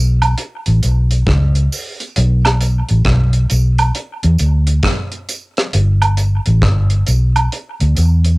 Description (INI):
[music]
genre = dub reggae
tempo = 67 BPM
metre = 4/4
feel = swing 63% on 16ths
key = unclear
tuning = A4 = 441 Hz
[part]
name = vintage muted fingered electric bass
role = bass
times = 0.0-8.4 s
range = G1 to E2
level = -12 LUFS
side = equal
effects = none
[part]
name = deep reggae drum kit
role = drums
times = 0.2-8.4 s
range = hi-hat, kick drum, rim click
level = -20 LUFS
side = equal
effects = cassette tape
[part]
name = woodblock and tambourine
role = percussion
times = 0.2-8.2 s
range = none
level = -20 LUFS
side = right 3 dB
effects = tape echo
[sound]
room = little or no reverb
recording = home recording on cassette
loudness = -12 LUFS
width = side -23 dB against mid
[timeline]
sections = 0.0-8.4 A section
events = none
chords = none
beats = 0.38 1.27 | 2.16 3.06 3.95 4.84 | 5.73 6.62 7.52